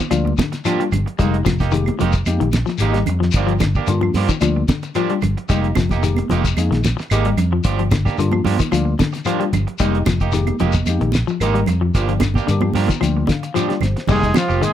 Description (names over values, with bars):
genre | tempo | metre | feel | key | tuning
afrobeat | 112 BPM | 4/4 | straight | F dorian | A4 = 442 Hz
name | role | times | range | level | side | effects
clean electric guitar | arpeggios | 0.0-14.7 s | D3 to G3 | -23 LUFS | left 9 dB | none
congas | percussion | 0.0-14.5 s | none | -25 LUFS | right 7 dB | none
tine electric piano | accompaniment | 0.1-14.7 s | G3 to Bb5 | -25 LUFS | left 5 dB | phaser
fingered electric bass | bass | 0.1-14.6 s | F1 to G2 | -19 LUFS | equal | none
cloth-damped thuddy drum kit | drums | 0.1-14.7 s | crash cymbal, hi-hat, kick drum, snare drum | -21 LUFS | equal | none
claves | percussion | 0.1-14.5 s | none | -32 LUFS | right 12 dB | none
shekere | percussion | 0.1-14.7 s | none | -28 LUFS | left 5 dB | none
electric guitar at the edge of break-up | stabs | 0.2-14.7 s | F3 to G4 | -25 LUFS | right 10 dB | none
clear trumpet | melody | 14.1-14.7 s | F4 to Ab4 | -21 LUFS | right 1 dB | plate reverb
growling tenor saxophone | second line | 14.1-14.7 s | F3 to Ab3 | -23 LUFS | right 7 dB | plate reverb
room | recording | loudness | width
light reverb, small room ambience | none | -16 LUFS | side -11 dB against mid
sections
0.0-14.1 A section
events
tine electric piano fill 12.5-14.1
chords
0.0 Gm7; 1.2 Fm11; 3.3 Gm7; 5.5 Fm11; 7.7 Gm7; 9.8 Fm11; 12.0 Gm7; 14.1 Fm11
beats
0.12 0.66 | 1.20 1.73 2.27 2.81 | 3.35 3.88 4.42 4.96 | 5.50 6.04 6.57 7.11 | 7.65 8.19 8.73 9.27 | 9.80 10.34 10.88 11.42 | 11.96 12.49 13.03 13.57 | 14.10 14.64